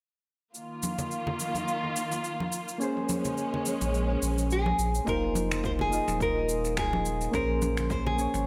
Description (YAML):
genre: sunset chillout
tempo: 106 BPM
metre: 4/4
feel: swing 55% on 16ths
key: unclear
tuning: A4 = 440 Hz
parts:
  - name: warm studio string section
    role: sustained chords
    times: 0.5-5.1 s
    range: Eb3 to F4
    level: -35 LUFS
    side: equal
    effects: none
  - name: electronic cabasa and finger snaps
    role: drums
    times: 0.5-8.4 s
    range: none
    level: -40 LUFS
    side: equal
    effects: overdrive, tape echo
  - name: congas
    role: percussion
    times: 0.8-8.4 s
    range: none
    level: -39 LUFS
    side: equal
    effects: tape echo
  - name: soft electric-piano-like synth keys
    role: accompaniment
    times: 2.8-8.5 s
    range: Bb3 to Eb5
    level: -34 LUFS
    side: equal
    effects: chorus, low-pass filter, tape echo
  - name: warm sub bass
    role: bass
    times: 3.8-8.5 s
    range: Eb1 to Bb1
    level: -33 LUFS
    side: equal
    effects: none
  - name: nylon-string guitar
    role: melody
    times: 4.5-8.5 s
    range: Ab4 to C5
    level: -32 LUFS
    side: equal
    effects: tape echo
  - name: electronic kick drum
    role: drums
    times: 5.1-8.0 s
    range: none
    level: -38 LUFS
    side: equal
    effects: overdrive
room: moderate echo chamber reverb, RT60 1.6 s, small room ambience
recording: echo-heavy mix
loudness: -29 LUFS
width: mono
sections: 0.5-5.1 A section; 5.1-8.5 B section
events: none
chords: 0.5 F7sus4; 2.8 Bbm9; 5.1 F7sus4; 7.3 Bbm9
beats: | 0.54 1.11 1.68 2.24 | 2.81 3.37 3.94 4.51 | 5.07 5.64 6.20 6.77 | 7.34 7.90